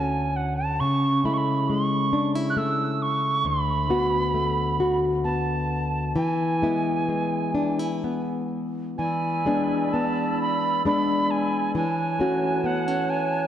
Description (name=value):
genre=celtic folk, Celtic slow air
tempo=61-69 BPM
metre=3/4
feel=rubato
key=E mixolydian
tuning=A4 = 439 Hz
part: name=mellow wooden whistle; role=melody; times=0.0-13.5 s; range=F#5 to F#6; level=-26 LUFS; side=right 4 dB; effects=analog delay
part: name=nylon-string guitar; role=accompaniment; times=0.0-13.5 s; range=D2 to F#4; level=-24 LUFS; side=left 2 dB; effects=none
part: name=breathy bright small flute group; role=sustained chords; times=9.0-13.5 s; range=C#5 to F#6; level=-31 LUFS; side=left 1 dB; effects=none
room=wet lush hall reverb, RT60 2.4 s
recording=dreamy mix soaked in reverb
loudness=-22 LUFS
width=side -10 dB against mid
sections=0.0-9.0 A section; 9.0-13.5 B section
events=none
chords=0.0 Dmaj7; 0.8 Amaj7/C#; 3.4 D6; 6.1 E7; 11.7 A6/E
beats=| 0.79 1.68 2.56 | 3.44 4.32 5.23 | 6.14 7.05 8.01 | 8.97 9.92 10.84 | 11.74 12.63